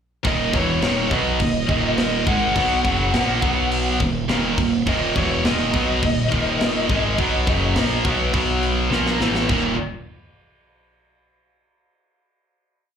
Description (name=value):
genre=heavy metal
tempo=104 BPM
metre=4/4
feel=straight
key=Eb minor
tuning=A4 = 440 Hz
part: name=heavy high-gain guitar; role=riff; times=0.2-9.7 s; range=Eb2 to Cb4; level=-24 LUFS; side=left 12 dB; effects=distortion, slapback echo
part: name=heavy high-gain guitar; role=riff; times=0.2-9.7 s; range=Eb2 to Cb4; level=-22 LUFS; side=right 10 dB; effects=distortion, slapback echo
part: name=growling picked electric bass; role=bass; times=0.2-9.8 s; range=Eb1 to Cb2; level=-25 LUFS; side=left 1 dB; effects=overdrive
part: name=tight metal drum kit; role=drums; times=0.2-9.6 s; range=crash cymbal, kick drum, snare drum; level=-25 LUFS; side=equal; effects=none
part: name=nasal lead guitar with a parked wah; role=melody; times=0.3-8.9 s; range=Db5 to Gb5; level=-26 LUFS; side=left 1 dB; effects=overdrive, slapback echo, ping-pong delay
room=little or no reverb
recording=live gig heard through the venue's PA, club reverb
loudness=-17 LUFS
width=side -8 dB against mid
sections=0.2-9.5 riff; 9.5-11.8 final chord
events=drum fill 8.9-9.5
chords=0.2 Ebm; 3.4 B5; 4.0 Ebm; 8.3 B5; 8.9 Fadd11; 9.5 Eb5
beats=| 0.24 0.82 1.40 1.98 | 2.55 3.13 3.71 4.29 | 4.87 5.45 6.03 6.61 | 7.18 7.76 8.34 8.92 | 9.50